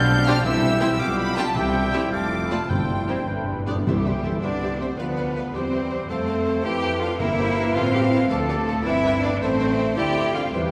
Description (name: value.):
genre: quick classical-period movement for symphony orchestra.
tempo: 108 BPM (dotted quarters).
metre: 6/8.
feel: straight.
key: C major.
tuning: A4 = 440 Hz.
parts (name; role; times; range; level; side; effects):
rich chamber violin section; melody; 0.0-10.7 s; G4 to G6; -34 LUFS; equal; none.
clear oboe; second line; 0.0-3.7 s; E5 to G5; -32 LUFS; equal; none.
dark clarinet; second line; 0.0-10.7 s; D4 to D5; -33 LUFS; equal; none.
large flute ensemble; second line; 0.0-10.7 s; G4 to A6; -33 LUFS; equal; none.
warm French horn section; sustained chords; 0.0-10.7 s; E3 to F4; -29 LUFS; equal; none.
dark trumpet section; stabs; 0.0-3.7 s; G4 to C5; -37 LUFS; equal; none.
rich chamber double bass section; bass; 0.0-10.7 s; F1 to F2; -30 LUFS; equal; none.
rich studio cello section; bass; 0.0-10.7 s; F2 to G4; -30 LUFS; equal; none.
rich chamber violin section; second line; 0.3-10.6 s; G4 to Bb5; -38 LUFS; equal; none.
rich chamber viola section; accompaniment; 0.3-10.6 s; A3 to D5; -35 LUFS; equal; none.
timpani; percussion; 0.4-4.4, 7.2-7.7 s; G2 to C3; -31 LUFS; equal; none.
room: wet church reverb, RT60 2.9 s.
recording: recorded in a church or concert hall.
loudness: -23 LUFS.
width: mono.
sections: 0.0-3.9 A section; 3.9-10.7 B section.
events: timpani fill 3.3-3.9.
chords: 0.4 C; 1.0 G7/B; 1.6 C; 2.1 Dm/F; 2.7 C/G; 3.3 G; 3.9 C; 5.0 Bdim/D; 5.5 C/E; 6.1 F; 7.2 Edim/G; 7.7 F/A; 8.3 Dm; 8.9 G7; 9.4 Am; 10.0 Dm7.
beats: | 0.44 1.00 | 1.56 2.12 | 2.70 3.28 | 3.85 4.42 | 4.97 5.53 | 6.08 6.63 | 7.19 7.74 | 8.29 8.85 | 9.41 9.97 | 10.53.